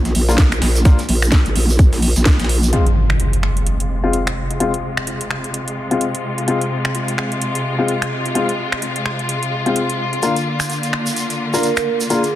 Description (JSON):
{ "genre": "bass house", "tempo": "128 BPM", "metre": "4/4", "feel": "swing 58% on 16ths", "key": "F dorian", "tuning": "A4 = 440 Hz", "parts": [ { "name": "vowel-sweep wobble bass", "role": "bass", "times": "0.0-2.7 s", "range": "Ab1 to Bb1", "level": "-16 LUFS", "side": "equal", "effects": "chorus, overdrive, sidechain pumping" }, { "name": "breakbeat sampler-style drum kit", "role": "drums", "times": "0.1-2.6 s", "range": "hi-hat, snare drum", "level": "-31 LUFS", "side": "right 1 dB", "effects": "high-pass filter on hats, high-pass filter on snare" }, { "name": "garage drum kit", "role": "drums", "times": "0.1-12.3 s", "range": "finger snaps, hi-hat, snare drum", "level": "-23 LUFS", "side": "equal", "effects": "none" }, { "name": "egg shaker", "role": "percussion", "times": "0.1-2.7, 10.2-12.3 s", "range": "none", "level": "-27 LUFS", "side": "right 4 dB", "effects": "none" }, { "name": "dark baby grand piano", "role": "stabs", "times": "0.3-12.2 s", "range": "Ab3 to F4", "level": "-21 LUFS", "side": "left 3 dB", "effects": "sidechain pumping, tape echo" }, { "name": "electronic kick drum", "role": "drums", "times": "0.4-2.4 s", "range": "none", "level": "-15 LUFS", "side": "equal", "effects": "none" }, { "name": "clear studio string section", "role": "sustained chords", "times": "2.7-12.4 s", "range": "C3 to F4", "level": "-22 LUFS", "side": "left 1 dB", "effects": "vintage 12-bit sampler grit, sidechain pumping, low-pass filter" }, { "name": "impact", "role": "sound effects", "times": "2.7-4.6 s", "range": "none", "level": "-18 LUFS", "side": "equal", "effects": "none" }, { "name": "vibraphone with medium mallets", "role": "melody", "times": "11.5-12.3 s", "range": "Ab4 to Bb4", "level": "-20 LUFS", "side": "right 7 dB", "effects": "none" } ], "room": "light reverb", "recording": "dense, heavily limited modern master", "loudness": "-15 LUFS", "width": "side -13 dB against mid", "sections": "0.0-2.7 A section; 2.7-12.4 B section", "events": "impact 2.7-4.6; filter sweep on string section 2.7-12.4", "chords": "0.0 N.C.; 2.7 Fm; 10.2 Bb", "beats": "0.38 | 0.85 1.32 1.79 2.26 | 2.73 3.20 3.67 4.13 | 4.60 5.07 5.54 6.01 | 6.48 6.95 7.42 7.88 | 8.35 8.82 9.29 9.76 | 10.23 10.70 11.16 11.63 | 12.10" }